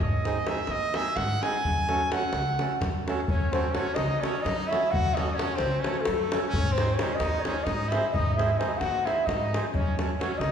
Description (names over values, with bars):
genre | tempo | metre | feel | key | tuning
balkan folk, Balkan wedding band | 260 BPM (eighths) | 7/8 | straight | F# dorian sharp4 | A4 = 441 Hz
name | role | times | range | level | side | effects
clear trumpet | second line | 0.0-10.5 s | A3 to G#5 | -31 LUFS | right 2 dB | none
upright bass | bass | 0.0-10.5 s | C#2 to G#2 | -32 LUFS | equal | none
davul | percussion | 0.0-10.5 s | none | -30 LUFS | left 1 dB | none
accordion | accompaniment | 0.2-10.3 s | G#3 to C#5 | -33 LUFS | right 3 dB | none
low ney | melody | 3.3-10.5 s | A4 to F#5 | -28 LUFS | left 1 dB | none
room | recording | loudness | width
wet scoring stage reverb, RT60 1.8 s | heard from further back in the room | -24 LUFS | side -8 dB against mid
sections
0.0-3.3 A section; 3.3-10.5 B section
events
speeding up 0.0-10.5; trumpet solo 0.0-3.3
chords
0.0 G#; 1.7 F#m; 6.5 G#; 9.7 F#m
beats
| 0.01 0.25 0.49 0.72 0.96 1.19 1.43 | 1.66 1.90 2.13 2.36 2.60 2.83 3.06 | 3.30 3.53 3.76 4.00 4.23 4.46 4.69 | 4.92 5.15 5.38 5.62 5.85 6.08 6.31 | 6.54 6.77 7.00 7.23 7.46 7.68 7.91 | 8.14 8.37 8.60 8.83 9.06 9.29 9.52 | 9.74 9.97 10.20 10.43